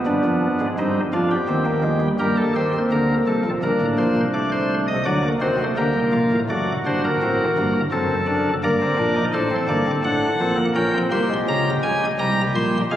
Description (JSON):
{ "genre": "classical, baroque-style 4-part fugue for pipe organ", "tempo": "84 BPM", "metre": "3/4", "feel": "straight", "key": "unclear", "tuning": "A4 = 440 Hz", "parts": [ { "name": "chamber organ, cornet", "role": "solo", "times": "0.0-13.0 s", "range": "F1 to C6", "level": "-18 LUFS", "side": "equal", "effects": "none" } ], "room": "wet cathedral reverb, RT60 6.0 s", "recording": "recorded on a phone in the room, club reverb", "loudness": "-18 LUFS", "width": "side -11 dB against mid", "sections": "0.0-6.5 A section; 6.5-13.0 B section", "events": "none", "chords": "0.1 G7; 1.5 Cm/Eb; 2.2 Gm; 4.3 D7/C; 5.8 Gm; 6.5 D/F#; 7.9 D7/F#; 8.6 Gm; 10.0 D7/A; 10.8 Gdim/Bb; 12.2 C5" }